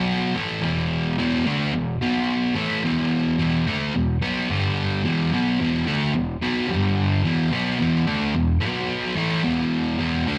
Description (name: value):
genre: rock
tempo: 109 BPM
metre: 4/4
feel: straight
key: unclear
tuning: A4 = 437 Hz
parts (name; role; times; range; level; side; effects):
- sludgy distorted guitar; solo; 0.0-10.4 s; E2 to D4; -23 LUFS; equal; overdrive
room: moderate stone room reverb, RT60 1.0 s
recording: rough rehearsal-room recording, tube saturation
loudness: -23 LUFS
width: mono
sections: 0.0-10.4 A section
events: none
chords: 0.4 E5; 2.0 B5; 2.6 E5; 4.5 G5; 5.0 E5; 6.7 G5; 7.2 E5; 8.6 B5; 9.2 E5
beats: 0.08 0.63 | 1.18 1.73 2.28 2.83 | 3.38 3.93 4.48 5.03 | 5.58 6.13 6.68 7.23 | 7.79 8.34 8.88 9.44 | 9.98